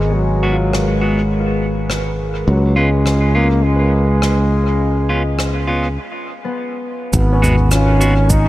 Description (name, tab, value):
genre	ambient dub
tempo	103 BPM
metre	4/4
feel	swing 54% on 16ths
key	G# dorian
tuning	A4 = 440 Hz
part	warm trombone	melody	0.0-8.5 s	F#3 to D#4	-21 LUFS	equal	dub echo
part	warm analog pad	sustained chords	0.0-8.5 s	G#3 to E#5	-25 LUFS	left 1 dB	chorus
part	concert harp	arpeggios	0.0-8.5 s	B3 to B4	-28 LUFS	left 2 dB	low-pass filter, tape echo
part	modern bright fingered electric bass	bass	0.0-8.5 s	G#1 to C#2	-15 LUFS	equal	none
part	clean electric guitar	stabs	0.4-8.1 s	G#3 to F#4	-24 LUFS	right 1 dB	dub echo
part	soft-mallet drum kit	drums	0.7-8.4 s	cabasa, rim click, toms	-26 LUFS	equal	dub echo
part	electronic kick drum	drums	7.1-8.4 s	none	-18 LUFS	equal	none
room	light reverb, small room ambience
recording	none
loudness	-13 LUFS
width	side -16 dB against mid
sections	0.0-7.1 A section; 7.1-8.5 B section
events	break 6.0-7.1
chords	0.0 G#m7; 2.5 C#7; 7.1 G#m7